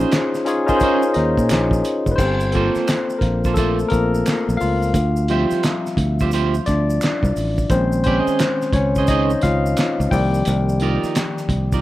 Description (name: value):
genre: R&B, neo-soul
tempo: 87 BPM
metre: 4/4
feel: swing 63% on 16ths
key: G minor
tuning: A4 = 439 Hz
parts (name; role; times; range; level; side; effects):
- electric guitar at the edge of break-up; second line; 0.0-11.8 s; Bb3 to E5; -25 LUFS; right 7 dB; spring reverb
- barky tine electric piano; accompaniment; 0.0-11.8 s; Eb3 to G5; -20 LUFS; left 2 dB; none
- fingered electric bass; bass; 0.0-11.8 s; F#1 to Bb2; -20 LUFS; equal; none
- cloth-damped thuddy drum kit; drums; 0.1-11.8 s; crash cymbal, handclaps, hi-hat, kick drum, snare drum; -23 LUFS; right 1 dB; none
- finger snaps and maracas; percussion; 0.1-11.8 s; none; -37 LUFS; right 4 dB; none
room: small room ambience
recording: rough home demo mix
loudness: -16 LUFS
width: side -15 dB against mid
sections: 0.0-2.2 A section; 2.2-11.8 B section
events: tine electric piano solo 2.2-11.8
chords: 0.0 Bbm11; 2.2 Gm11; 4.9 Dm11; 7.7 Bbm11; 10.1 Cm11